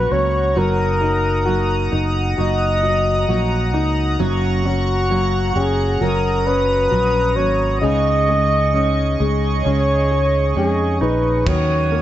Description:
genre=pop ballad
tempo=66 BPM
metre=4/4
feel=straight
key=F# major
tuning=A4 = 440 Hz
part: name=mellow flugelhorn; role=melody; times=0.0-12.0 s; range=F#4 to D#5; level=-20 LUFS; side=equal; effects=none
part: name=clear baby grand piano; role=accompaniment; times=0.0-12.0 s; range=C#3 to G#4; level=-23 LUFS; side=left 5 dB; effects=none
part: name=chorused pulse-width pad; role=sustained chords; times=0.0-12.0 s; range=F#4 to D#6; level=-26 LUFS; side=right 1 dB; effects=none
part: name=fingerpicked steel-string acoustic guitar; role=arpeggios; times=0.0-12.0 s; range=F#2 to G#4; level=-26 LUFS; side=right 7 dB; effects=none
part: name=fingered electric bass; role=bass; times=0.0-12.0 s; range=F#1 to E#2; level=-21 LUFS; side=equal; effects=none
part: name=modern studio drum kit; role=drums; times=11.5-11.7 s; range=crash cymbal, kick drum, toms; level=-23 LUFS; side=equal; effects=none
room=light reverb, small room ambience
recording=nothing above 7.9 kHz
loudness=-15 LUFS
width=side -12 dB against mid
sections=0.0-11.5 A section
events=none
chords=0.0 F#; 0.6 D#m/F#; 4.2 F#; 7.8 C#sus2; 11.5 D#m7

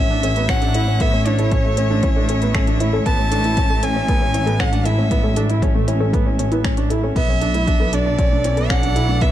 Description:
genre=piano and strings electronica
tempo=117 BPM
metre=4/4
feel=straight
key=A major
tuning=A4 = 436 Hz
part: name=rich violin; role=melody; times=0.0-9.3 s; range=C#5 to A5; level=-23 LUFS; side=equal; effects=none
part: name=warm string quartet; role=sustained chords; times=0.0-9.3 s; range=A2 to E5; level=-28 LUFS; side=right 2 dB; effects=sidechain pumping
part: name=warbly dusty pluck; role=arpeggios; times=0.0-9.3 s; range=A3 to C#5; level=-28 LUFS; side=left 2 dB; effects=chorus, cassette tape, sidechain pumping, tape echo
part: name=warm baby grand piano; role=riff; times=0.0-9.3 s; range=A3 to E4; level=-24 LUFS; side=right 2 dB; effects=tape echo
part: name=rich studio double bass section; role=bass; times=0.0-9.3 s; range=A1 to B1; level=-20 LUFS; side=equal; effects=sidechain pumping
part: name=minimal click drum kit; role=drums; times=0.2-9.3 s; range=crash cymbal, finger snaps, hi-hat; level=-29 LUFS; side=left 1 dB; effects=none
part: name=electronic kick drum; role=drums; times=0.5-9.3 s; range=none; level=-20 LUFS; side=equal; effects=none
room=light reverb, studio reverb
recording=dark, warm production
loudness=-15 LUFS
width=side -12 dB against mid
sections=0.0-9.3 A section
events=none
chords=0.0 A; 3.1 Amaj9; 7.2 Bm7

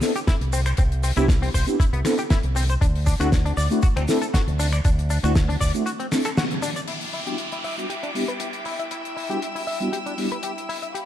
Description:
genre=nu-disco, nu disco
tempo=118 BPM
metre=4/4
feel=swing 53% on 16ths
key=E minor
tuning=A4 = 440 Hz
part: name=mellow synth brass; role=accompaniment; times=0.0-10.3 s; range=G3 to A4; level=-26 LUFS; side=equal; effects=chorus, sidechain pumping, ping-pong delay
part: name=damped 70s drum kit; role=drums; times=0.0-11.1 s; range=crash cymbal, finger snaps, hi-hat, shaker, snare drum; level=-29 LUFS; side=left 1 dB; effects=studio reverb
part: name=tube shaker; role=percussion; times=0.0-6.9 s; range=none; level=-41 LUFS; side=right 1 dB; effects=none
part: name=direct-recorded clean electric guitar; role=riff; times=0.2-11.0 s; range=B3 to E5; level=-30 LUFS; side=left 3 dB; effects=analog chorus, low-pass filter, ping-pong delay
part: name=electronic kick drum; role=drums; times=0.3-5.7 s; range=none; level=-20 LUFS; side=equal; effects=studio reverb
part: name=fingered electric bass with an envelope filter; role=bass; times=0.4-5.7 s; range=C2 to D2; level=-22 LUFS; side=equal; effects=sidechain pumping
part: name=clear studio violin section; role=sustained chords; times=6.9-11.1 s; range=E4 to E6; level=-32 LUFS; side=left 1 dB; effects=sidechain pumping
part: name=downlifter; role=sound effects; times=6.9-10.9 s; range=none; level=-34 LUFS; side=right 2 dB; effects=none
room=light reverb, studio reverb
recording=dark, warm production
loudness=-20 LUFS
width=side -11 dB against mid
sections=0.0-6.9 A section; 6.9-11.1 B section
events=break 5.9-6.9; band accent 6.4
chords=0.0 Cmaj7; 2.8 D9; 6.9 Em7

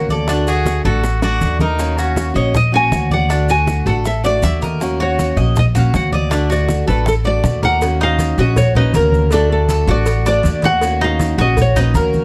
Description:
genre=latin, Cuban son and guajira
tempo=160 BPM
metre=4/4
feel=straight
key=unclear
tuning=A4 = 441 Hz
part: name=nylon-string guitar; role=melody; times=0.0-12.2 s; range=A4 to Ab5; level=-21 LUFS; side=equal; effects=none
part: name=picked steel-string acoustic guitar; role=accompaniment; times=0.0-12.2 s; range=D3 to Gb4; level=-26 LUFS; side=equal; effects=none
part: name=Cuban tres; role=arpeggios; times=0.0-12.2 s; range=D4 to Eb5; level=-24 LUFS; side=equal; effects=none
part: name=upright bass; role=bass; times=0.0-12.2 s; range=A1 to Eb2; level=-20 LUFS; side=equal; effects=none
part: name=congas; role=percussion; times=0.1-12.2 s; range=none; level=-23 LUFS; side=equal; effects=none
part: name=maracas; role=percussion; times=0.1-12.2 s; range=none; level=-37 LUFS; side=equal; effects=none
part: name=bongos and cowbell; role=percussion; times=0.3-12.1 s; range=none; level=-28 LUFS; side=equal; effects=none
part: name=clear trumpet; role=second line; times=0.5-2.3 s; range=Db4 to Ab4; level=-24 LUFS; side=equal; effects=none
room=little or no reverb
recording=close, detailed microphones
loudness=-15 LUFS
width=mono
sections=0.0-7.8 A section; 7.8-12.2 B section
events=drum fill 1.0-1.8, 7.1-7.8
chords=0.3 D; 1.8 Ebm7; 3.3 D; 4.8 Ebm7; 6.3 D; 7.8 Ebm7; 9.3 D; 10.8 Ebm7

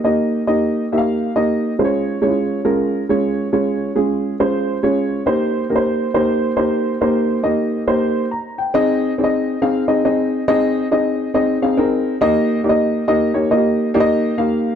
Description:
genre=soul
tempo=138 BPM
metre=4/4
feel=swing 62% on 8ths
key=Ab major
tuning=A4 = 439 Hz
part: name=dark upright piano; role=solo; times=0.0-14.7 s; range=Ab3 to Bb5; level=-15 LUFS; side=equal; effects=none
room=light reverb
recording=dark, warm production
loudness=-15 LUFS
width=side -8 dB against mid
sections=0.0-8.7 A section; 8.7-14.8 B section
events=none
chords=0.0 Eb; 1.8 Db; 5.3 Cm7; 8.7 Ab; 12.2 Eb

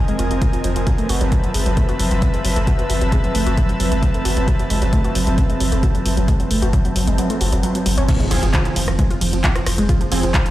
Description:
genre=driving peak-time techno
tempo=133 BPM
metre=4/4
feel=straight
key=unclear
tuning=A4 = 440 Hz
part: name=swarming drone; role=drone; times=0.0-10.5 s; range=F3 to C4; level=-26 LUFS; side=right 3 dB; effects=built-in reverb, sidechain pumping
part: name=airy breathy pad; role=texture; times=0.0-8.1 s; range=Bb4 to A5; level=-26 LUFS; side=left 2 dB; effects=chorus, sidechain pumping
part: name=warbly dusty pluck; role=riff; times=0.1-10.5 s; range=F3 to Gb4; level=-25 LUFS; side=equal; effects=chorus, tube saturation, sidechain pumping, digital delay
part: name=punchy analog drum machine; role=drums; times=0.1-10.5 s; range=crash cymbal, handclaps, hi-hat, ride cymbal, rim click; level=-26 LUFS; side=equal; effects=none
part: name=saturated sub bass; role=bass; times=0.2-10.3 s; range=F1 to Gb1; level=-20 LUFS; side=equal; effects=tube saturation, sidechain pumping, low-pass filter
part: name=electronic kick drum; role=drums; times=0.4-10.4 s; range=none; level=-18 LUFS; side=equal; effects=none
part: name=impact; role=sound effects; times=8.1-9.9 s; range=none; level=-25 LUFS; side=equal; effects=none
part: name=rave stab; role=stabs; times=8.3-10.2 s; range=F3 to Ab4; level=-25 LUFS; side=right 1 dB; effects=chorus, built-in reverb, sidechain pumping, tape echo
room=little or no reverb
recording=played on a big sound system in a bare room, large studio reverb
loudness=-16 LUFS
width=side -15 dB against mid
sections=0.0-8.1 A section; 8.1-10.5 B section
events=kick drops out 7.2-8.1; drop 8.1-10.5; impact 8.1-9.9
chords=0.0 Fm; 0.9 Gbm; 8.1 Fm

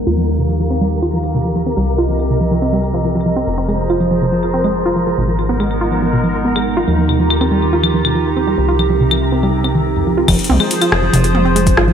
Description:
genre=IDM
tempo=141 BPM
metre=4/4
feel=straight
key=F minor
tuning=A4 = 440 Hz
part: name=warbly tape-like pad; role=sustained chords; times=0.0-11.9 s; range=C3 to F5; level=-18 LUFS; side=right 2 dB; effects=chorus, built-in reverb
part: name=deep acid bass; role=bass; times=0.0-11.9 s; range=F1 to Eb2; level=-19 LUFS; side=equal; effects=tube saturation
part: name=flickering grainy texture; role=texture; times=0.0-10.3 s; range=Bb4 to Bb5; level=-26 LUFS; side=left 2 dB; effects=built-in reverb, lush chorus
part: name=warbly dusty pluck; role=arpeggios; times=0.1-11.9 s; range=F2 to F4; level=-17 LUFS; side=right 1 dB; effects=chorus, cassette tape, digital delay
part: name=electro analog drum machine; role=drums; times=0.3-11.9 s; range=claves, crash cymbal, hi-hat, rim click, shaker, toms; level=-18 LUFS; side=left 3 dB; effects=none
part: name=electronic kick drum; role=drums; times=10.3-11.8 s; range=none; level=-16 LUFS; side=equal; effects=none
room=moderate lush hall reverb, RT60 1.9 s, digital ambience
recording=bright 1980s-style digital production, low-pass filter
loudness=-13 LUFS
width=side -8 dB against mid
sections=0.0-10.3 A section; 10.3-11.9 B section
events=filter sweep on synth arpeggio sound 0.0-10.3; filter sweep 0.0-10.3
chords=0.1 Ebadd9; 1.8 Cm; 3.5 Fm; 5.2 Abmadd9; 6.9 Ebadd9; 8.6 Cm; 10.3 Fm

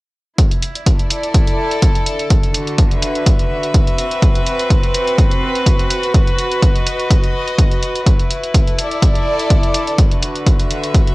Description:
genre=piano house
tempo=125 BPM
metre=4/4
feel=swing 54% on 16ths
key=unclear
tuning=A4 = 440 Hz
part: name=electronic hi-hat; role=drums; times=0.4-11.1 s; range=none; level=-23 LUFS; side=right 1 dB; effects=cassette tape
part: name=electronic kick drum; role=drums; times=0.4-11.0 s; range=none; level=-13 LUFS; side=equal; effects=cassette tape
part: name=rich chamber string section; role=texture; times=0.4-11.1 s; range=D3 to E5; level=-19 LUFS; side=equal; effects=sidechain pumping
room=little or no reverb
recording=home recording on cassette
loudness=-13 LUFS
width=side -21 dB against mid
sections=0.4-11.1 A section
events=none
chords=0.4 E7sus4; 2.1 D69; 4.0 Cmaj7; 5.9 B; 8.1 E5; 9.7 D69

